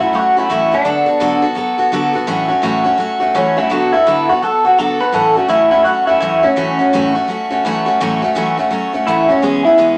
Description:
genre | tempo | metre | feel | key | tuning
rock | 168 BPM | 4/4 | swing 62% on 8ths | A major | A4 = 440 Hz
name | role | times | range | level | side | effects
electric guitar through a small old amp | melody | 0.0-10.0 s | C#4 to B4 | -15 LUFS | equal | phaser
picked steel-string acoustic guitar | accompaniment | 0.0-10.0 s | A2 to A4 | -18 LUFS | equal | none
room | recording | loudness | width
moderate studio reverb, RT60 0.7 s | none | -14 LUFS | mono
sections
0.0-10.0 A section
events
none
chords
0.0 A6; 0.9 D6; 2.3 A6; 3.7 D6; 5.1 A6; 9.4 E6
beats
0.14 0.50 | 0.86 1.21 1.57 1.93 | 2.28 2.64 3.00 3.35 | 3.71 4.07 4.42 4.78 | 5.14 5.50 5.85 6.21 | 6.57 6.93 7.28 7.64 | 8.00 8.36 8.71 9.07 | 9.43 9.79

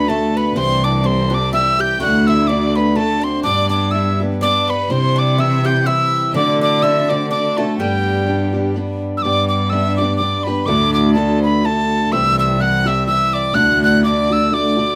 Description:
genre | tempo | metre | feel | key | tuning
celtic folk, Celtic waltz | 125 BPM | 3/4 | swing 56% on 8ths | G major | A4 = 440 Hz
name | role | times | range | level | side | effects
tin whistle | melody | 0.0-15.0 s | G5 to G6 | -20 LUFS | equal | none
Irish bouzouki | second line | 0.0-8.7 s | G3 to G4 | -28 LUFS | equal | none
bright fiddle | second line | 0.0-15.0 s | G4 to G5 | -29 LUFS | equal | none
picked steel-string acoustic guitar | accompaniment | 0.0-15.0 s | D2 to G4 | -23 LUFS | equal | none
warm cello | bass | 0.0-14.8 s | C2 to D3 | -21 LUFS | equal | none
room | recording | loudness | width
light reverb | close, detailed microphones | -16 LUFS | mono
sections
0.0-9.2 A section; 9.2-15.0 A section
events
none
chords
0.0 D; 0.6 C; 2.0 D; 3.5 G; 4.9 C; 6.3 D7; 7.8 G; 10.7 D; 12.1 C; 13.6 D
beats
0.07 | 0.56 1.04 1.52 | 2.01 2.49 2.97 | 3.45 3.94 4.42 | 4.90 5.38 5.86 | 6.34 6.83 7.31 | 7.79 8.27 8.75 | 9.23 9.71 10.19 | 10.67 11.15 11.63 | 12.12 12.60 13.08 | 13.56 14.04 14.52

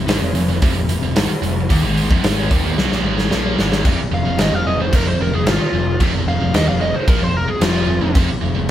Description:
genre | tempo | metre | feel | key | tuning
hard rock | 112 BPM | 4/4 | straight | F minor | A4 = 440 Hz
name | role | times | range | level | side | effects
high-gain distorted guitar | riff | 0.0-8.7 s | F2 to Bb3 | -23 LUFS | right 3 dB | distortion
sludgy distorted guitar | riff | 0.0-8.7 s | F2 to Bb3 | -23 LUFS | left 4 dB | overdrive
picked electric bass | bass | 0.0-8.7 s | F1 to Eb2 | -22 LUFS | equal | none
huge arena drum kit | drums | 0.1-8.3 s | crash cymbal, hi-hat, kick drum, snare drum | -18 LUFS | equal | none
bluesy overdriven lead guitar | melody | 4.1-8.1 s | F4 to F5 | -22 LUFS | right 1 dB | distortion
room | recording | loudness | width
moderate studio reverb, RT60 0.6 s | band playing live in one room | -15 LUFS | side -12 dB against mid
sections
0.0-3.9 A section; 3.9-8.7 B section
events
drum fill 2.8-3.9; lead electric guitar solo 3.9-8.7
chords
0.0 Fm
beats
0.09 0.62 1.16 | 1.70 2.24 2.78 3.32 | 3.86 4.39 4.93 5.47 | 6.01 6.54 7.08 7.62 | 8.16 8.69

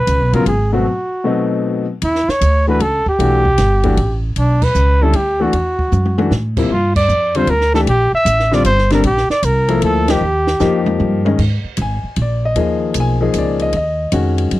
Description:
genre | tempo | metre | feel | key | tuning
modal jazz | 154 BPM | 3/4 | swing 66% on 8ths | G# dorian from 11.4 s | A4 = 440 Hz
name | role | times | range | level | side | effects
breathy trumpet | melody | 0.0-11.0 s | D4 to E5 | -16 LUFS | right 1 dB | none
upright bass | bass | 0.0-14.6 s | G1 to A2 | -16 LUFS | right 1 dB | none
compact cocktail drum kit | drums | 0.1-14.6 s | crash cymbal, hi-hat, kick drum, ride cymbal, snare drum, toms | -24 LUFS | equal | none
clear concert grand piano | accompaniment | 0.3-14.6 s | B2 to G#5 | -17 LUFS | left 3 dB | none
room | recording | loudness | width
little or no reverb | dry, close 1970s-style studio recording | -13 LUFS | side -16 dB against mid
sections
0.0-2.0 A section; 2.0-11.4 B section; 11.4-14.6 C section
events
break 0.9-2.0; band accent 4.6, 6.9, 10.0; drum fill 5.9-6.3, 10.6-11.4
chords
0.0 G#m11; 0.9 B7b9; 2.0 Em9; 6.7 Gm9; 10.2 D#; 11.4 G#9sus4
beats
0.08 0.47 | 0.86 1.25 1.64 | 2.03 2.42 2.80 | 3.19 3.58 3.97 | 4.36 4.75 5.14 | 5.53 5.92 6.31 | 6.70 7.09 7.48 | 7.87 8.26 8.65 | 9.04 9.43 9.82 | 10.22 10.61 11.00 | 11.39 11.78 12.17 | 12.56 12.95 13.34 | 13.73 14.12 14.52

